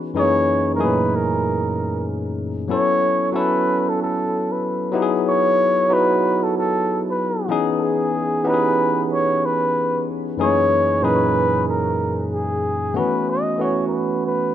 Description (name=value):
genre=soul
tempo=94 BPM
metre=4/4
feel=swing 58% on 16ths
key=unclear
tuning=A4 = 441 Hz
part: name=barky tine electric piano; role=accompaniment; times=0.0-14.5 s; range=F#2 to A4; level=-20 LUFS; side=moving between left 6 dB and right 4 dB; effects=auto-pan
part: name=breathy flugelhorn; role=melody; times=0.2-14.5 s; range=G#4 to D#5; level=-20 LUFS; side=equal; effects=none
room=moderate lush hall reverb, RT60 3.0 s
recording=rough home demo mix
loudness=-17 LUFS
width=side -11 dB against mid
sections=0.0-13.0 A section; 13.0-14.5 B section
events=none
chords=0.1 F#13; 2.7 B7sus4; 4.9 Emaj9; 7.5 C#m7/E; 10.4 F#13; 13.0 B7sus4